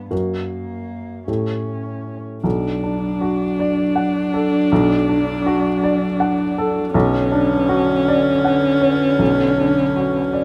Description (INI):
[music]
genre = neoclassical piano and strings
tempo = 53 BPM (dotted quarters)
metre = 6/8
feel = rubato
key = unclear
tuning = A4 = 441 Hz
[part]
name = dark cello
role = second line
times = 0.0-10.4 s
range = D3 to C#4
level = -29 LUFS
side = equal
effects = none
[part]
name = warm baby grand piano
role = accompaniment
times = 0.0-10.4 s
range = B1 to F#5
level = -23 LUFS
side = equal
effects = none
[part]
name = chorused pulse-width pad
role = sustained chords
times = 2.4-10.4 s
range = D3 to D5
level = -33 LUFS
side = equal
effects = none
[part]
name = dark viola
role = accompaniment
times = 2.5-10.4 s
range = C#4 to D4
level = -21 LUFS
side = equal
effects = none
[sound]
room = wet small room reverb, RT60 0.5 s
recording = rough home demo mix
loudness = -18 LUFS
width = mono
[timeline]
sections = 0.0-2.4 A section; 2.4-10.4 B section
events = none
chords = 0.1 F#; 1.3 A7; 2.4 D6/B; 6.9 Bmadd9